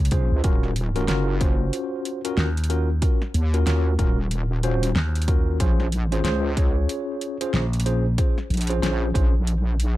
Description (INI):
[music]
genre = glitch hop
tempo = 93 BPM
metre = 4/4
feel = swing 61% on 16ths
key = Eb dorian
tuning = A4 = 441 Hz
[part]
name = vintage slap bass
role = bass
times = 0.0-8.2 s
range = Bb1 to Eb2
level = -22 LUFS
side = equal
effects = none
[part]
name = tine electric piano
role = stabs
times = 0.1-9.3 s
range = Db4 to Db5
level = -27 LUFS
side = left 1 dB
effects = medium stereo tremolo, sidechain pumping, ping-pong delay
[part]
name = electronic kick drum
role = drums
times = 0.1-9.3 s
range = none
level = -21 LUFS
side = equal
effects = none
[part]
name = pop drum kit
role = drums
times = 0.1-10.0 s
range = hi-hat, snare drum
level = -29 LUFS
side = equal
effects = none
[part]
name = wobble bass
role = bass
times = 0.3-10.0 s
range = Eb1 to Eb2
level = -22 LUFS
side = equal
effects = chorus, tube saturation
[sound]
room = little or no reverb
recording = dark, warm production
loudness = -20 LUFS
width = side -16 dB against mid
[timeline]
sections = 0.0-10.0 A section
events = none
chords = 0.4 Ebm7; 5.6 Bbm7